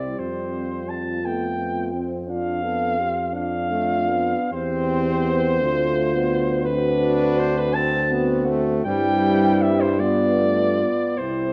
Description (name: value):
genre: classical, hymn-like piece for brass band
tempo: 50-58 BPM (dotted quarters)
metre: 6/8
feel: rubato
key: C major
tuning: A4 = 440 Hz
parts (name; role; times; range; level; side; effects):
- mellow flugelhorn; melody; 0.0-11.5 s; B4 to A5; -26 LUFS; equal; none
- mellow French horn section; second line; 0.0-11.5 s; E4 to A4; -29 LUFS; equal; none
- dark trombone; accompaniment; 0.0-11.5 s; G3 to D4; -30 LUFS; equal; none
- mellow euphonium; accompaniment; 0.0-11.5 s; G3 to D4; -32 LUFS; equal; none
- mellow tuba; bass; 0.0-11.5 s; C2 to G2; -28 LUFS; equal; none
room: moderate recital hall reverb, RT60 1.5 s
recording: worn, warbling old tape, cassette tape, warbly pitch drift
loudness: -22 LUFS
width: mono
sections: 0.0-11.5 A section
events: none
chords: 0.2 Fadd9; 2.3 N.C.; 4.5 C/E; 5.6 Dm7; 8.9 C/G; 10.0 G7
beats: | 0.19 1.24 | 2.29 3.35 | 4.52 5.60 | 6.67 7.75 | 8.86 10.01 | 11.19